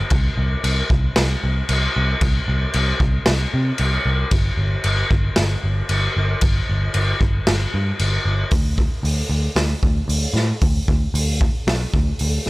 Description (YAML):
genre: rock, shoegaze and dream pop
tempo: 114 BPM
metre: 4/4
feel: straight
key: unclear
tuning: A4 = 441 Hz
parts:
  - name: vintage muted picked electric bass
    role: bass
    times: 0.1-12.5 s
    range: G1 to C3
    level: -20 LUFS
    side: equal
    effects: none
  - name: raw garage drum kit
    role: drums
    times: 0.1-12.5 s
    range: crash cymbal, hi-hat, kick drum, snare drum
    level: -20 LUFS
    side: equal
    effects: none
room: little or no reverb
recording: none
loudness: -17 LUFS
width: side -20 dB against mid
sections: 0.0-8.5 A section; 8.5-12.5 B section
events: none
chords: none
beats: | 0.11 0.63 1.16 1.69 | 2.21 2.74 3.27 3.79 | 4.32 4.84 5.37 5.89 | 6.42 6.94 7.47 7.99 | 8.52 9.04 9.57 10.09 | 10.62 11.14 11.67 12.20